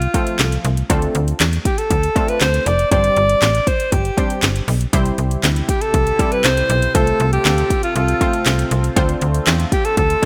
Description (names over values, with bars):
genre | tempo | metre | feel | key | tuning
dance-pop | 119 BPM | 4/4 | straight | C major | A4 = 439 Hz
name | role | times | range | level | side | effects
breathy alto saxophone | melody | 0.0-10.3 s | F4 to D5 | -21 LUFS | equal | none
slap-like FM bass | bass | 0.0-10.2 s | F1 to E2 | -21 LUFS | equal | sidechain pumping
house drum kit | drums | 0.0-10.3 s | handclaps, hi-hat, kick drum, snare drum | -22 LUFS | equal | none
analog pluck | accompaniment | 0.1-10.3 s | F3 to C5 | -26 LUFS | equal | chorus, sidechain pumping
chorused pulse-width pad | sustained chords | 4.9-10.3 s | C3 to A4 | -30 LUFS | equal | sidechain pumping
room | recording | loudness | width
light reverb | bright 1980s-style digital production | -17 LUFS | mono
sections
0.0-10.3 A section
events
none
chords
0.0 F; 0.9 Dm7; 2.9 Gsus4; 4.9 C; 6.9 F/C; 9.0 Dm7